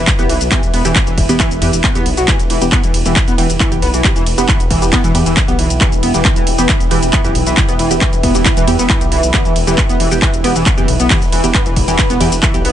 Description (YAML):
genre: driving peak-time techno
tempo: 136 BPM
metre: 4/4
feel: straight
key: E minor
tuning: A4 = 439 Hz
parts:
  - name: overdriven synth lead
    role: riff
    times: 0.0-12.7 s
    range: E3 to B3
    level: -19 LUFS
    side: equal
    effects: distortion, ensemble chorus, sidechain pumping, dub echo
  - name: detuned saw bass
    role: bass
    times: 0.0-12.7 s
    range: E1 to E2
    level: -18 LUFS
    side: equal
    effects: sidechain pumping
  - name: warbly tape-like pad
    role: texture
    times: 0.0-12.7 s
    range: E4 to B5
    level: -23 LUFS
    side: left 1 dB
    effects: chorus, built-in reverb, sidechain pumping
  - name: electronic kick drum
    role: drums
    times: 0.1-12.5 s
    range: none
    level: -15 LUFS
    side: equal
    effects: none
  - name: techno drum kit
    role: drums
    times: 0.1-12.7 s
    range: handclaps, hi-hat, ride cymbal, shaker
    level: -17 LUFS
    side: equal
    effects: sidechain pumping on hats, sidechain pumping on perc, sidechain pumping on cymbals
  - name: filtered dub chord stab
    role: stabs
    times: 0.2-12.6 s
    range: E3 to G4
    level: -20 LUFS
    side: right 3 dB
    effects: phaser, sidechain pumping, dub echo
  - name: deep dark ambient pad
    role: drone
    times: 3.8-12.7 s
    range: E3 to E4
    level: -23 LUFS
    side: right 2 dB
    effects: chorus, built-in reverb, sidechain pumping
room: light reverb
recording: nothing above 10.3 kHz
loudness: -10 LUFS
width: side -11 dB against mid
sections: 0.0-12.7 A section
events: none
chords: 0.0 Em